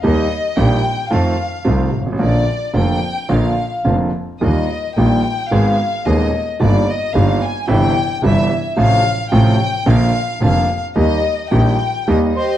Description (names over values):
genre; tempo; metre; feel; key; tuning
tango; 110 BPM; 4/4; rubato; Eb major; A4 = 441 Hz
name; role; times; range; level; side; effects
warm chamber violin section; second line; 0.0-12.6 s; G4 to Ab5; -20 LUFS; left 3 dB; none
clear concert grand piano; accompaniment; 0.0-12.3 s; Eb1 to Ab4; -17 LUFS; right 1 dB; none
clear double bass; bass; 0.0-12.3 s; F1 to F2; -17 LUFS; equal; none
bandoneon; melody; 12.4-12.6 s; C5; -19 LUFS; right 5 dB; none
room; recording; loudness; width
moderate large studio reverb, RT60 1.2 s; worn, warbling old tape, cassette tape, warbly pitch drift; -14 LUFS; side -12 dB against mid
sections
0.0-12.6 A section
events
violin section solo 0.0-12.6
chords
0.0 Eb; 1.1 F7; 2.2 Bb; 4.4 Ebadd9; 5.5 Abm; 6.6 Ebadd9/G; 7.7 C/G; 8.8 F/A; 9.9 Bb; 11.0 Eb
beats
| 0.03 0.57 1.11 1.65 | 2.20 2.74 3.29 3.86 | 4.42 4.97 5.52 6.07 | 6.61 7.15 7.70 8.24 | 8.78 9.32 9.87 10.42 | 10.97 11.52 12.08